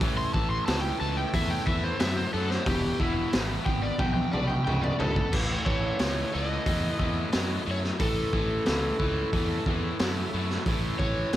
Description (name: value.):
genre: blues rock power trio and southern rock.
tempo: 90 BPM.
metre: 4/4.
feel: straight.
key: A major.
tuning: A4 = 440 Hz.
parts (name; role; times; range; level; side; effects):
overdriven tonewheel organ; sustained chords; 0.0-11.4 s; A3 to B4; -40 LUFS; right 2 dB; none.
biting overdriven guitar; riff; 0.0-11.4 s; E2 to F#3; -31 LUFS; left 1 dB; none.
fuzz fingered electric bass; bass; 0.0-11.4 s; E1 to F#2; -31 LUFS; equal; overdrive.
raw garage drum kit; drums; 0.0-11.4 s; crash cymbal, hi-hat, kick drum, snare drum, toms; -29 LUFS; equal; none.
overdriven slide guitar; melody; 0.2-11.4 s; E4 to C6; -32 LUFS; equal; none.
room: light reverb, small room ambience.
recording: none.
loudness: -25 LUFS.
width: side -13 dB against mid.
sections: 0.0-5.3 A section; 5.3-11.4 B section.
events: electric slide guitar solo 0.0-5.3; drum fill 4.0-5.3.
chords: 0.0 A; 2.7 E; 5.3 A.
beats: | 0.01 0.68 1.34 2.00 | 2.67 3.34 4.00 4.67 | 5.33 6.00 6.67 7.33 | 8.00 8.67 9.34 10.00 | 10.67 11.33.